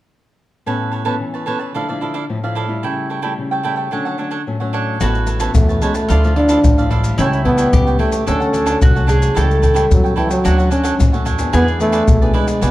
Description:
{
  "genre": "samba and choro",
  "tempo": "110 BPM",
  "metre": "4/4",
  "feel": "straight",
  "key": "A major",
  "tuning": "A4 = 439 Hz",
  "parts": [
    { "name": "cavaquinho", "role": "accompaniment", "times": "0.7-12.7 s", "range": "D4 to A5", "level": "-22 LUFS", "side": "right 5 dB", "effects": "none" },
    { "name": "nylon-string guitar", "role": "accompaniment", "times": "0.7-12.7 s", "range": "A2 to G#4", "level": "-23 LUFS", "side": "left 2 dB", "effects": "none" },
    { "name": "mandolin", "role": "second line", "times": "5.0-12.7 s", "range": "E4 to A4", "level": "-23 LUFS", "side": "equal", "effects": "none" },
    { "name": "upright bass", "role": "bass", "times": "5.0-12.7 s", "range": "A1 to E2", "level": "-18 LUFS", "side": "equal", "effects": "none" },
    { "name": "maracas, surdo and pandeiro", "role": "percussion", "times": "5.0-12.7 s", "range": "none", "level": "-17 LUFS", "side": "left 1 dB", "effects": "none" },
    { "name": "breathy trombone", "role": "melody", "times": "5.5-12.7 s", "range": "E3 to D4", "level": "-17 LUFS", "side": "equal", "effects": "none" }
  ],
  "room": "moderate large studio reverb, RT60 1.4 s",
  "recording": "dark, warm production",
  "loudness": "-14 LUFS",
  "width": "side -16 dB against mid",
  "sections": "0.7-5.0 A section; 5.0-12.7 B section",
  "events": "none",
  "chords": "0.7 Aadd9; 1.7 Dmadd9; 2.8 A7/C#; 3.9 Dmaj7; 5.0 Aadd9; 6.1 Dmadd9; 7.2 A7/C#; 8.3 Dmaj7; 9.4 A7/C#; 10.4 Dmaj7; 11.5 E7",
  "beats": "| 0.66 1.20 1.75 2.29 | 2.83 3.38 3.92 4.47 | 5.01 5.55 6.10 6.64 | 7.18 7.73 8.27 8.81 | 9.36 9.90 10.45 10.99 | 11.53 12.08 12.62"
}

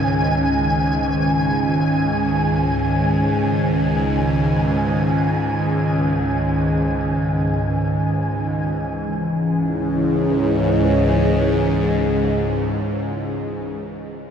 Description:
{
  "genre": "dark ambient drone",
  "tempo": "free time",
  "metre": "none",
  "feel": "none",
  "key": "unclear",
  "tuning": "A4 = 439 Hz",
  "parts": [
    { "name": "sweeping resonant pad", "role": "sustained chords", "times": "0.0-13.7 s", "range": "D#3 to G#4", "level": "-21 LUFS", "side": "equal", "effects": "chorus" },
    { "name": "bowed-like drone", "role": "drone", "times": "0.0-13.4 s", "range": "C#2 to G#2", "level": "-21 LUFS", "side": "equal", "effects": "built-in reverb, phaser" },
    { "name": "flickering grainy texture", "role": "texture", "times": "0.0-8.7 s", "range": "G#5", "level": "-26 LUFS", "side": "equal", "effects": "built-in reverb" }
  ],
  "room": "wet huge ambient reverb, RT60 8.1 s",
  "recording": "none",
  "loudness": "-17 LUFS",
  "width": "side -8 dB against mid",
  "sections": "0.0-8.7 A section; 8.7-13.2 B section",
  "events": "none",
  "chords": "0.0 C#sus2; 8.7 C#m",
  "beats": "free time"
}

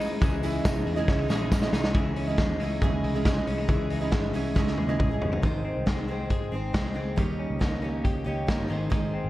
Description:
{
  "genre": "jangly indie pop",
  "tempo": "138 BPM",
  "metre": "4/4",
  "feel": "straight",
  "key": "unclear",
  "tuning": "A4 = 440 Hz",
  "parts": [
    { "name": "picked steel-string acoustic guitar", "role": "accompaniment", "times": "0.0-9.3 s", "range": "Db3 to Eb5", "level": "-31 LUFS", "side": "right 4 dB", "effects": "none" },
    { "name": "twelve-string electric guitar", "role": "arpeggios", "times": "0.0-9.3 s", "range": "Eb3 to Ab4", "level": "-32 LUFS", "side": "left 4 dB", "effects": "spring reverb" },
    { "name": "raw garage drum kit", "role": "drums", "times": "0.0-9.0 s", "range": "hi-hat, kick drum, snare drum, toms", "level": "-27 LUFS", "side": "equal", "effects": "vintage 12-bit sampler grit" },
    { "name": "tambourine", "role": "percussion", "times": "0.0-1.8 s", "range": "none", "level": "-50 LUFS", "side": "right 4 dB", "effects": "none" },
    { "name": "vintage muted picked electric bass", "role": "bass", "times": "0.2-9.3 s", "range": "G1 to Ab2", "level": "-32 LUFS", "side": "equal", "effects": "none" }
  ],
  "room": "light reverb, small room ambience",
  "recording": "dark, warm production",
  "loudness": "-24 LUFS",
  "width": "side -16 dB against mid",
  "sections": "0.0-2.0 A section; 2.0-5.4 B section; 5.4-9.3 C section",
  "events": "drum fill 1.1-2.0, 4.6-5.4",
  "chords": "0.0 Dbmadd9; 5.4 Ab; 7.2 Eb7; 8.7 Ab",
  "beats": "| 0.22 0.65 1.08 1.52 | 1.95 2.39 2.82 3.25 | 3.69 4.12 4.56 5.00 | 5.43 5.87 6.30 6.74 | 7.17 7.61 8.04 8.48 | 8.92"
}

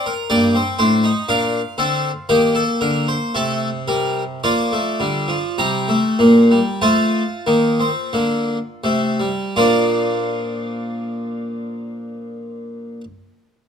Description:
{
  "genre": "classical, baroque-style 4-part fugue for harpsichord",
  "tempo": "40-62 BPM",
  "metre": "4/4",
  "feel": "straight",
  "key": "Bb major",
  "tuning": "A4 = 439 Hz",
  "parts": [
    { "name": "harpsichord", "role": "solo", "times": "0.0-13.0 s", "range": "G2 to Bb5", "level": "-16 LUFS", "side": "equal", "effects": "none" }
  ],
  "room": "light reverb",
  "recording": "close, detailed microphones",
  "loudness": "-16 LUFS",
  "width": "side -7 dB against mid",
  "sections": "0.0-9.6 A section; 9.6-13.7 B section",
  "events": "slowing down 0.0-9.6",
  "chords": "0.3 Gm; 2.3 Cm7; 4.4 Bb; 6.8 F7; 9.6 Bb",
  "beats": "| 0.29 1.28 2.29 3.34 | 4.43 5.58 6.82 8.13 | 9.56 11.04 12.51"
}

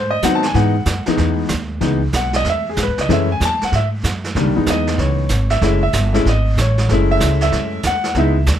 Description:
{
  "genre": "jazz piano trio",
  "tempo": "190 BPM",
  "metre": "4/4",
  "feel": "swing 64% on 8ths",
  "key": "C# minor",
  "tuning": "A4 = 440 Hz",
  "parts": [
    { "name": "warm concert grand piano", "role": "melody", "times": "0.0-8.6 s", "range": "D#3 to A5", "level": "-18 LUFS", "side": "left 2 dB", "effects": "none" },
    { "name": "upright bass", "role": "bass", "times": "0.0-8.6 s", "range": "F#1 to D#3", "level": "-18 LUFS", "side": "equal", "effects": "none" },
    { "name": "vintage brush drum kit", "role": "drums", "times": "0.2-8.6 s", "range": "brushed snare drum, hi-hat, kick drum, snare drum", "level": "-23 LUFS", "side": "right 4 dB", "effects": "none" }
  ],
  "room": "little or no reverb",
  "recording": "close, detailed microphones",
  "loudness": "-14 LUFS",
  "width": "side -10 dB against mid",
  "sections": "0.6-8.6 A section",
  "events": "grand piano solo 0.0-8.6",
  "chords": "0.0 G#7#9; 0.6 C#m7; 3.1 F#m7; 4.4 C#m7; 5.6 F#m7",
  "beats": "0.24 | 0.56 0.88 1.19 1.51 | 1.83 2.14 2.46 2.78 | 3.09 3.41 3.73 4.04 | 4.36 4.68 4.99 5.31 | 5.63 5.94 6.26 6.58 | 6.89 7.21 7.53 7.84 | 8.16 8.47"
}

